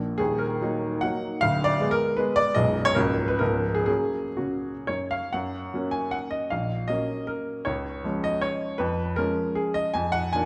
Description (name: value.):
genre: classical, romantic triple-time dance for piano with dotted rhythms.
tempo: 116-170 BPM.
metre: 3/4.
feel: rubato.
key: F# major.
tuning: A4 = 439 Hz.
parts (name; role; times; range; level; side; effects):
warm baby grand piano; solo; 0.0-10.5 s; B0 to G#5; -26 LUFS; equal; none.
room: wet recital hall reverb, RT60 1.8 s.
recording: none.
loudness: -26 LUFS.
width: mono.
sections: 0.0-5.3 A section; 5.3-10.5 B section.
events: none.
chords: 0.2 Ebm; 1.4 Ddim7; 2.6 G#m/B; 3.0 F#/C#; 3.4 C#7; 3.9 F#; 6.5 F#/A#; 7.7 C#; 8.8 C#/E#; 9.9 Bb7/F.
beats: | 0.20 0.62 1.03 | 1.42 1.80 2.19 | 2.56 2.96 3.40 | 3.87 4.37 4.88 | 5.34 5.73 6.14 | 6.52 6.90 7.31 | 7.68 8.06 8.44 | 8.80 9.17 9.56 | 9.93 10.33.